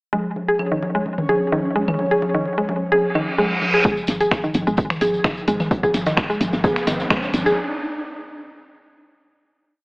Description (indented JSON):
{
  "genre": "minimal techno",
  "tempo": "129 BPM",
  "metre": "4/4",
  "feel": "straight",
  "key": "unclear",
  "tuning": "A4 = 439 Hz",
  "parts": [
    { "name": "mallet-like synth pluck", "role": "riff", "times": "0.1-7.5 s", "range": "D#3 to G#4", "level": "-21 LUFS", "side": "equal", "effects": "chorus, sidechain pumping, dub echo" },
    { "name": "electronic congas, claves and toms", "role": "percussion", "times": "0.1-7.4 s", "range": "none", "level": "-26 LUFS", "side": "equal", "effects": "overdrive" },
    { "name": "bubbling stepped-filter texture", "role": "texture", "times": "0.6-3.9 s", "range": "C#4 to C#5", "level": "-27 LUFS", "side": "equal", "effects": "chorus, built-in reverb, sidechain pumping" },
    { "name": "reverse cymbal and riser", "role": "sound effects", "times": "3.1-7.6 s", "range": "none", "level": "-25 LUFS", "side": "right 1 dB", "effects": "none" },
    { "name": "electronic kick drum", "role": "drums", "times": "3.8-7.2 s", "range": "none", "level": "-20 LUFS", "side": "equal", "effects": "none" },
    { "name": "tambourine", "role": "percussion", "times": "3.8-7.5 s", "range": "none", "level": "-36 LUFS", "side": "equal", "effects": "none" },
    { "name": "natural country drum kit", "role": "drums", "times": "3.9-7.6 s", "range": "hi-hat, snare drum", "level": "-33 LUFS", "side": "equal", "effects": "none" },
    { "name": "woody FM bass", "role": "bass", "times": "4.1-7.5 s", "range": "G#1", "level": "-24 LUFS", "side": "equal", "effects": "sidechain pumping" },
    { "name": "punchy analog drum machine", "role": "drums", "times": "4.1-7.4 s", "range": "finger snaps, hi-hat", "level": "-23 LUFS", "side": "equal", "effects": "none" }
  ],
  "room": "moderate digital room reverb, RT60 1.0 s, small room ambience",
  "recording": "AM radio sound",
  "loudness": "-18 LUFS",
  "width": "side -28 dB against mid",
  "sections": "0.1-3.9 intro; 3.9-7.6 build",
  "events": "reverse cymbal 3.1-3.9; build-up 3.9-7.6; riser 3.9-7.6",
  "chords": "0.1 G#5"
}